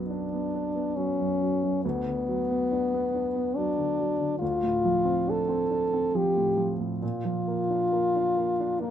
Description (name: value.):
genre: classical, romantic duo for French horn and grand piano.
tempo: 69 BPM.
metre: 3/4.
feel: rubato.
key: unclear.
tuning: A4 = 443 Hz.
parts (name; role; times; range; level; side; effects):
warm baby grand piano; accompaniment; 0.0-8.9 s; B1 to D4; -30 LUFS; right 3 dB; none.
warm French horn; melody; 0.1-8.9 s; Bb3 to A4; -26 LUFS; left 2 dB; none.
room: light reverb.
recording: minimal, uncompressed stereo recording.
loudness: -24 LUFS.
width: side -10 dB against mid.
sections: 0.0-8.9 A section.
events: none.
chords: 0.0 Bm; 1.8 Bm/D; 4.4 Dm7; 7.0 Bb.